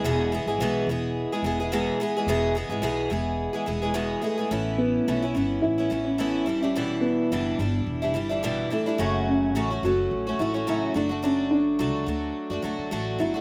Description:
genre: acoustic pop.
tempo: 107 BPM.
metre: 4/4.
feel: swing 55% on 16ths.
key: unclear.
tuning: A4 = 440 Hz.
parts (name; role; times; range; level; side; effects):
picked twelve-string acoustic guitar; accompaniment; 0.0-13.4 s; E2 to G#4; -29 LUFS; equal; none.
upright bass; bass; 0.0-13.3 s; E1 to F#2; -34 LUFS; equal; none.
dark upright piano; melody; 4.2-13.4 s; A3 to F#4; -28 LUFS; equal; none.
room: little or no reverb.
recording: recorded outdoors, with no room sound.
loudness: -26 LUFS.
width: mono.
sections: 0.0-4.5 A section; 4.5-13.4 B section.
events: none.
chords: 0.0 E; 4.5 Aadd9; 6.5 Em7; 9.0 F#m; 11.0 D/F#.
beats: | 0.04 0.59 1.15 1.71 | 2.27 2.83 3.39 3.95 | 4.51 5.07 5.63 6.19 | 6.75 7.31 7.87 8.43 | 8.99 9.55 10.11 10.67 | 11.23 11.80 12.36 12.92.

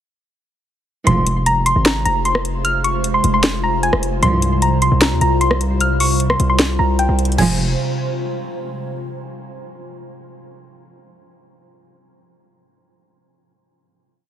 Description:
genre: hip hop, trap.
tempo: 152 BPM.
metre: 4/4.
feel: half-time.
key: F minor.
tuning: A4 = 440 Hz.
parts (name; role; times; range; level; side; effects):
soft round pluck; melody; 1.1-7.6 s; G5 to F6; -20 LUFS; equal; chorus, tape echo.
glassy FM pad; sustained chords; 1.1-7.6 s; C3 to C5; -22 LUFS; equal; ensemble chorus, built-in reverb.
dark symphonic string section; stabs; 1.1-1.4, 4.2-4.6, 7.4-7.6 s; C2 to F3; -20 LUFS; right 3 dB; none.
hard-hitting 808-style bass; bass; 1.1-7.8 s; F1 to E2; -19 LUFS; equal; none.
trap drum kit; drums; 1.1-7.5 s; crash cymbal, hi-hat, rim click, snare drum; -19 LUFS; left 1 dB; none.
room: little or no reverb.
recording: heavily compressed radio sound, multiband compression.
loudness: -14 LUFS.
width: side -10 dB against mid.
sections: 1.1-7.4 hook; 7.4-9.0 final chord.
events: none.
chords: 1.1 Fm; 4.2 Csus4; 7.4 Fm.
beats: | 1.07 1.46 1.86 2.25 | 2.65 3.04 3.44 3.83 | 4.23 4.62 5.01 5.41 | 5.80 6.20 6.59 6.99 | 7.38.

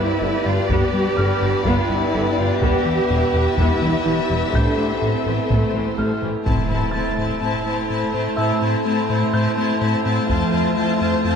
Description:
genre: cinematic, hybrid orchestral and electronic film score.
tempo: 125 BPM.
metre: 4/4.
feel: straight.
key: A minor.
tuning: A4 = 435 Hz.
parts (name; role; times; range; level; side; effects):
warm studio violin section; second line; 0.0-11.4 s; B4 to A5; -26 LUFS; left 4 dB; none.
rich symphonic viola section; accompaniment; 0.0-11.4 s; C3 to A4; -26 LUFS; equal; none.
metallic inharmonic drone; sustained chords; 0.0-11.4 s; A3 to C5; -23 LUFS; left 1 dB; chorus, built-in reverb.
smooth synth bass; riff; 0.0-11.4 s; E2 to A3; -24 LUFS; left 2 dB; none.
rich symphonic double bass section; bass; 0.0-6.3 s; E1 to A1; -27 LUFS; right 4 dB; none.
warm symphonic cello section; bass; 0.0-11.4 s; F2 to G4; -25 LUFS; right 3 dB; none.
clear concert grand piano; texture; 0.0-11.4 s; E5 to A6; -34 LUFS; equal; digital delay.
taiko ensemble; drums; 0.7-7.4, 10.3-11.2 s; none; -27 LUFS; equal; none.
impact; sound effects; 6.5-8.4 s; none; -27 LUFS; equal; none.
room: wet scoring stage reverb, RT60 1.8 s.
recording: none.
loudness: -17 LUFS.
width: side -7 dB against mid.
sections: 0.0-6.5 A section; 6.5-11.4 B section.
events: impact 6.5-8.4.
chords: 0.0 G; 2.6 Em; 4.5 Am; 10.3 F.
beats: 0.22 | 0.70 1.18 1.66 2.14 | 2.62 3.10 3.58 4.06 | 4.54 5.02 5.50 5.98 | 6.46 6.94 7.42 7.90 | 8.38 8.86 9.34 9.82 | 10.30 10.78 11.26.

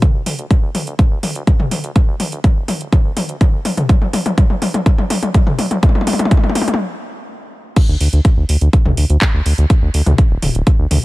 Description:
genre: melodic techno.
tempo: 124 BPM.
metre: 4/4.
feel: straight.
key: unclear.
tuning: A4 = 444 Hz.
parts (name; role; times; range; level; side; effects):
electronic kick drum; drums; 0.0-10.8 s; none; -12 LUFS; equal; none.
house drum kit; drums; 0.0-11.0 s; crash cymbal, handclaps, hi-hat, toms; -19 LUFS; left 1 dB; none.
round analog bass; bass; 0.1-11.0 s; D1 to D2; -17 LUFS; equal; sidechain pumping, high-pass filter.
room: little or no reverb.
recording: none.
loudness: -12 LUFS.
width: side -19 dB against mid.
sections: 0.0-7.8 A section; 7.8-11.0 B section.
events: build-up 0.0-7.8; drum fill 0.0-6.8; stop 6.8-7.8; drop 7.8-11.0.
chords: none.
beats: | 0.02 0.51 0.99 1.47 | 1.96 2.44 2.93 3.41 | 3.89 4.38 4.86 5.34 | 5.83 6.31 6.80 7.28 | 7.76 8.25 8.73 9.22 | 9.70 10.18 10.67.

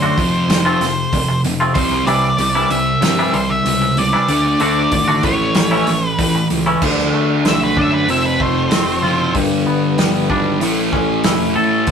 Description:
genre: quiet-loud alternative rock.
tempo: 95 BPM.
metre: 4/4.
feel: straight.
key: unclear.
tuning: A4 = 440 Hz.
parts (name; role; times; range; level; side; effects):
octave-fuzz lead guitar; melody; 0.0-9.3 s; B4 to E5; -19 LUFS; left 1 dB; distortion.
twangy electric guitar; arpeggios; 0.0-11.9 s; F2 to A4; -20 LUFS; left 1 dB; none.
fuzz guitar; riff; 0.0-11.9 s; F2 to D4; -17 LUFS; equal; distortion.
modern bright picked electric bass; bass; 0.0-11.9 s; E1 to A2; -25 LUFS; equal; none.
loose indie drum kit; drums; 0.2-11.9 s; crash cymbal, hi-hat, kick drum, snare drum; -21 LUFS; right 1 dB; none.
room: moderate studio reverb, RT60 0.7 s.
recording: rough rehearsal-room recording.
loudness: -13 LUFS.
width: side -7 dB against mid.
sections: 0.0-6.8 A section; 6.8-11.9 B section.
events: half time 0.0-6.8; lead electric guitar solo 6.8-11.9.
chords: 0.2 F; 1.8 Cadd9; 4.3 D; 5.2 A; 6.8 D; 8.1 F; 9.3 G; 10.6 A.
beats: 0.49 1.12 | 1.76 2.39 3.02 3.66 | 4.29 4.92 5.55 6.18 | 6.82 7.45 8.08 8.71 | 9.35 9.98 10.61 11.24 | 11.87.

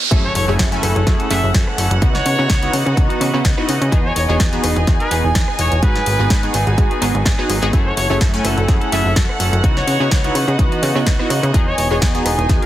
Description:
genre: filtered disco house.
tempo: 126 BPM.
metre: 4/4.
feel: swing 54% on 16ths.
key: F# dorian.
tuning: A4 = 437 Hz.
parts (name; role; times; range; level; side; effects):
riser and impact; sound effects; 0.0-2.0 s; none; -23 LUFS; right 2 dB; none.
funky polysynth comp; accompaniment; 0.1-12.7 s; E3 to G#5; -23 LUFS; equal; chorus, phaser, sidechain pumping.
dark studio violin section; sustained chords; 0.1-12.7 s; F#4 to G#5; -24 LUFS; right 2 dB; sidechain pumping.
direct-recorded clean electric guitar; riff; 0.1-12.7 s; E3 to A4; -26 LUFS; left 1 dB; sidechain pumping.
plucky analog bass; bass; 0.1-12.6 s; E1 to C#3; -19 LUFS; equal; sidechain pumping.
electronic kick drum; drums; 0.1-12.6 s; none; -16 LUFS; equal; none.
house drum kit; drums; 0.1-12.7 s; hi-hat, rim click, snare drum; -23 LUFS; left 1 dB; sidechain pumping on hats, high-pass filter on hats, high-pass filter on snare.
clear trumpet section; melody; 0.2-12.7 s; B4 to E5; -23 LUFS; left 1 dB; vintage 12-bit sampler grit, sidechain pumping.
room: little or no reverb.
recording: heavily compressed radio sound.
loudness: -14 LUFS.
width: side -13 dB against mid.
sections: 0.1-12.7 A section.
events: drop 0.1-12.7; impact 0.1-2.0.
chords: 0.1 F#m7; 2.0 C#m11; 3.9 Emaj7; 5.8 G#m7; 7.7 F#m7; 9.6 C#m11; 11.5 Emaj7.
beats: | 0.11 0.59 1.07 1.54 | 2.02 2.50 2.97 3.45 | 3.92 4.40 4.88 5.35 | 5.83 6.30 6.78 7.26 | 7.73 8.21 8.69 9.16 | 9.64 10.11 10.59 11.07 | 11.54 12.02 12.49.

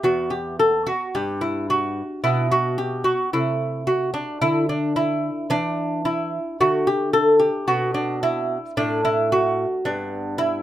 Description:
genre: classical, baroque-style dance for lute.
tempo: 55 BPM.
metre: 3/4.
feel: rubato.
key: unclear.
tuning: A4 = 444 Hz.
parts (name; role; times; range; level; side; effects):
lute; solo; 0.0-10.6 s; E2 to A4; -20 LUFS; equal; none.
room: little or no reverb.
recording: close, detailed microphones, faint mains hum.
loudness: -20 LUFS.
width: side -12 dB against mid.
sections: 0.0-10.6 A section.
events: none.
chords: 0.0 Em; 3.3 Am/C; 6.6 D5; 9.9 G.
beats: | 0.03 1.13 2.22 | 3.32 4.41 5.50 | 6.60 7.69 8.79 | 9.87.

